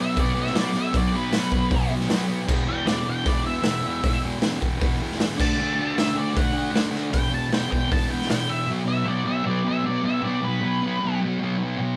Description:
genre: garage rock duo or trio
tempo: 155 BPM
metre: 4/4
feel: straight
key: unclear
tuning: A4 = 439 Hz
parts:
  - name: octave-fuzz lead guitar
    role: melody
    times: 0.0-11.2 s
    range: B4 to A5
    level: -30 LUFS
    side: equal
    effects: distortion
  - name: fuzz guitar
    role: riff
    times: 0.0-12.0 s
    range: E2 to D4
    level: -27 LUFS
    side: equal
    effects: distortion
  - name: raw garage drum kit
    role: drums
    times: 0.2-8.4 s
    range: crash cymbal, hi-hat, kick drum, snare drum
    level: -27 LUFS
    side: equal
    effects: none
room: light reverb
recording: band playing live in one room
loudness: -24 LUFS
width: mono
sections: 0.0-8.7 A section; 8.7-12.0 A section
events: none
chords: 0.0 B5; 2.5 E5; 5.4 D; 7.1 E5; 8.7 B5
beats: 0.17 0.55 | 0.94 1.33 1.71 2.10 | 2.49 2.88 3.26 3.65 | 4.04 4.43 4.81 5.20 | 5.59 5.98 6.37 6.76 | 7.14 7.53 7.92 8.31 | 8.70 9.08 9.47 9.86 | 10.24 10.63 11.01 11.40 | 11.79

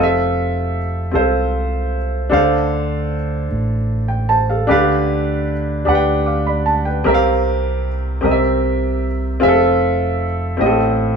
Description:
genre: slow gospel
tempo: 51 BPM (dotted quarters)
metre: 6/8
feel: straight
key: F major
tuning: A4 = 440 Hz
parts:
  - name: clear baby grand piano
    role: accompaniment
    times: 0.0-11.2 s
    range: A2 to D6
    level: -16 LUFS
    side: equal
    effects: none
  - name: fingered electric bass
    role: bass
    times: 0.0-11.2 s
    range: F1 to D2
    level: -20 LUFS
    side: right 1 dB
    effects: none
room: moderate small room reverb, RT60 0.6 s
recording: band playing live in one room, small room ambience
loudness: -15 LUFS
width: side -6 dB against mid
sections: 0.0-11.2 A section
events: none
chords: 0.0 Fmaj7; 2.3 Dm7; 4.7 G7/D; 7.1 C7sus4; 8.2 C7; 9.4 Fmaj7; 10.6 F7/A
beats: 1.15 | 2.33 3.51 | 4.69 5.87 | 7.05 8.23 | 9.41 10.59

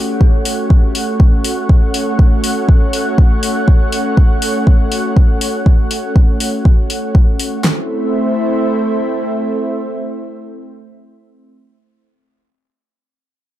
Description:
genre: melodic techno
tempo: 121 BPM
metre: 4/4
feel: straight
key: unclear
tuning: A4 = 440 Hz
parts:
  - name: lush unison pad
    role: sustained chords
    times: 0.0-11.5 s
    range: A3 to F#5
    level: -18 LUFS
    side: right 1 dB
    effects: chorus, sidechain pumping
  - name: deep house drum kit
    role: drums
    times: 0.2-7.8 s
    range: handclaps, kick drum, snare drum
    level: -10 LUFS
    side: equal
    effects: none
  - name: electronic hi-hat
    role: drums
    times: 0.5-7.5 s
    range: none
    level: -21 LUFS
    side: left 4 dB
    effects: none
room: light reverb, digital ambience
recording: echo-heavy mix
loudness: -11 LUFS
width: side -13 dB against mid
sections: 0.0-7.6 A section; 7.6-11.6 B section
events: none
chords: 0.0 F#m; 7.6 Am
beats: 0.21 0.70 1.20 | 1.69 2.19 2.69 3.18 | 3.68 4.17 4.67 5.17 | 5.66 6.16 6.65 7.15 | 7.64 8.14 8.64 9.13 | 9.63 10.12 10.62 11.12

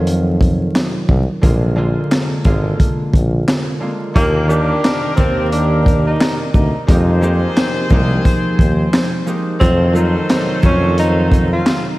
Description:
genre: hip hop, boom-bap hip-hop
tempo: 88 BPM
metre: 4/4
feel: swing 60% on 16ths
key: F dorian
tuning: A4 = 439 Hz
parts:
  - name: concert harp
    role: accompaniment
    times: 0.0-12.0 s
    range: D3 to D5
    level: -20 LUFS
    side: right 1 dB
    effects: cassette tape, high-pass filter, low-pass filter
  - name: warm tuba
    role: bass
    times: 0.0-11.6 s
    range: Ab1 to F2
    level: -16 LUFS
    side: equal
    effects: none
  - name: crunchy breakbeat drum kit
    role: drums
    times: 0.1-11.9 s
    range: handclaps, hi-hat, kick drum, shaker, snare drum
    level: -16 LUFS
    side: equal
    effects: none
  - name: breathy tenor saxophone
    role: melody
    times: 4.2-11.8 s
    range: Bb3 to F4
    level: -20 LUFS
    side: equal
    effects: high-pass filter, low-pass filter, diffuse ambient delay
  - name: brilliant trumpet section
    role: stabs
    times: 4.2-12.0 s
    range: Gb3 to C5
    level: -25 LUFS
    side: left 2 dB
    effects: high-pass filter, low-pass filter, diffuse ambient delay
room: light reverb, small room ambience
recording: vinyl crackle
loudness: -12 LUFS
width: side -18 dB against mid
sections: 0.0-4.2 A section; 4.2-12.0 B section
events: none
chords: 0.0 F7b9; 1.4 Bb7; 4.2 Ebmaj7; 6.9 Fm11; 9.6 F7b9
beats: 0.07 0.75 | 1.43 2.11 2.79 3.48 | 4.16 4.84 5.52 6.20 | 6.88 7.57 8.25 8.93 | 9.61 10.29 10.98 11.66

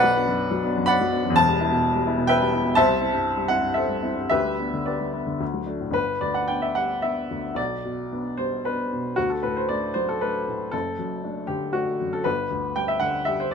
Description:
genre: classical, romantic character piece for solo piano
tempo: 106-130 BPM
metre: 3/4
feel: rubato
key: G major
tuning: A4 = 438 Hz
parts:
  - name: warm baby grand piano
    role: solo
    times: 0.0-13.5 s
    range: E1 to B5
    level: -21 LUFS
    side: left 1 dB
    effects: none
room: moderate studio reverb, RT60 0.6 s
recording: minimal, uncompressed stereo recording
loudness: -22 LUFS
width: side -6 dB against mid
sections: 0.0-5.9 A section; 5.9-13.5 B section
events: none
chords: 0.0 Bm; 1.4 Em; 2.8 Am7/C; 4.3 G/D; 5.4 D; 5.9 G; 7.6 G/B; 9.2 D; 10.7 D/F#; 12.3 G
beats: 0.39 0.87 | 1.35 1.82 2.29 | 2.76 3.24 3.75 | 4.31 4.86 5.41 | 5.95 6.49 7.02 | 7.56 8.11 8.64 | 9.16 9.69 10.21 | 10.73 11.23 11.74 | 12.25 12.76 13.27

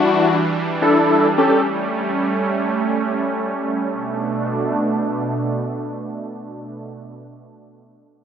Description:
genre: pop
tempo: free time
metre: none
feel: none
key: B minor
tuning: A4 = 441 Hz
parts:
  - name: big bright polysynth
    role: accompaniment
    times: 0.0-1.6 s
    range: C#4 to A4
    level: -16 LUFS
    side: left 2 dB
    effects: low-pass filter
  - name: supersaw pad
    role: sustained chords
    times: 0.0-6.9 s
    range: B2 to D4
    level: -21 LUFS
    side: right 2 dB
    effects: low-pass filter
room: moderate lush hall reverb, RT60 2.2 s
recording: none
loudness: -17 LUFS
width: side -8 dB against mid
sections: 0.0-3.9 A section; 3.9-6.1 B section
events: filter sweep 0.0-3.9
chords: 0.0 Em7; 1.4 A7; 3.9 Bm7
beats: free time

